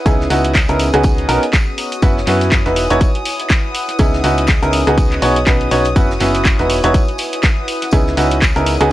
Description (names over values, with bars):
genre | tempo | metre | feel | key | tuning
piano house | 122 BPM | 4/4 | swing 58% on 16ths | C# minor | A4 = 440 Hz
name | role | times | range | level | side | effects
warm chamber string section | sustained chords | 0.0-8.9 s | D#6 | -26 LUFS | left 3 dB | sidechain pumping
warbly tape-like pad | texture | 0.0-8.9 s | B3 to G#5 | -25 LUFS | equal | chorus, built-in reverb, sidechain pumping
bright baby grand piano | riff | 0.1-8.9 s | B3 to C#5 | -16 LUFS | right 1 dB | sidechain pumping, analog delay
solid FM bass | bass | 0.1-8.9 s | E1 to F#2 | -19 LUFS | equal | sidechain pumping
damped 70s drum kit | drums | 0.1-8.8 s | hi-hat, snare drum, tambourine | -32 LUFS | equal | sidechain pumping on hats, high-pass filter on hats, high-pass filter on snare, sidechain pumping on perc, high-pass filter on perc, high-pass filter on room
electronic kick drum | drums | 0.1-8.5 s | none | -14 LUFS | equal | none
punchy analog drum machine | drums | 0.1-8.9 s | handclaps, hi-hat | -20 LUFS | equal | none
room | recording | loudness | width
little or no reverb | dry, gritty hardware recording, cassette tape | -12 LUFS | side -15 dB against mid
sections
0.0-8.9 A section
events
none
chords
0.0 C#m9; 1.0 Bmaj9; 2.0 Emaj9; 3.7 C#m9; 5.0 Badd9; 6.0 Emaj9; 7.7 C#m9